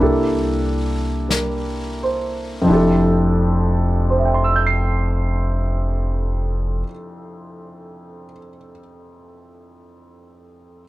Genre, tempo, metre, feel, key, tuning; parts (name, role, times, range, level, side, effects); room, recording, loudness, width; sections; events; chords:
jazz ballad; 43 BPM; 4/4; swing 68% on 8ths; F major; A4 = 440 Hz
warm grand piano; accompaniment; 0.0-10.8 s; F2 to C7; -20 LUFS; equal
upright bass; bass; 0.0-6.8 s; F1 to C2; -21 LUFS; equal
jazz brush drum kit; drums; 0.0-3.4 s; brushed snare drum, hi-hat, snare drum; -29 LUFS; left 2 dB
little or no reverb; -17 LUFS; side -17 dB against mid
0.0-2.7 A section; 2.7-8.3 B section
slowing down 0.0-2.7
0.0 C13; 2.7 Fmaj13